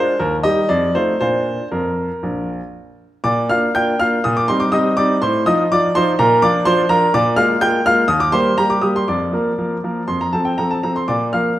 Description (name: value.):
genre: classical-period piano sonatina.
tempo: 117-127 BPM.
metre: 4/4.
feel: rubato.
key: Bb major.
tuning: A4 = 440 Hz.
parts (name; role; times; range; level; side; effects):
clear baby grand piano; solo; 0.0-11.6 s; Bb1 to G6; -15 LUFS; equal; none.
room: wet recital hall reverb, RT60 1.4 s.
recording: none.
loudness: -14 LUFS.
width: side -14 dB against mid.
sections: 0.0-3.2 A section; 3.2-11.6 B section.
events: none.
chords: 0.2 Eb; 0.7 F7; 1.2 Bb; 4.2 Cm7/Bb; 5.2 F7/A; 6.2 Bb; 7.1 Bb7; 8.1 Eb; 9.1 Bb/F; 10.1 F; 11.1 Bb.